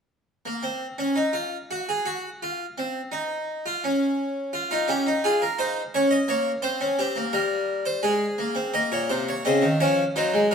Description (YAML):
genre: classical, baroque-style 3-part fugue for harpsichord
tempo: 85 BPM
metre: 3/4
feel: straight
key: Bb minor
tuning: A4 = 440 Hz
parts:
  - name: harpsichord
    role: solo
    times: 0.5-10.5 s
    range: Bb2 to Eb5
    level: -22 LUFS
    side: equal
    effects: none
room: wet stone room reverb, RT60 1.2 s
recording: minimal, uncompressed stereo recording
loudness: -22 LUFS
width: side -6 dB against mid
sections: 0.3-10.5 A section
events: none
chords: 0.3 N.C.; 4.5 Fm; 5.9 Bbm/Db; 6.6 C5; 8.0 Abadd9; 8.7 Bbm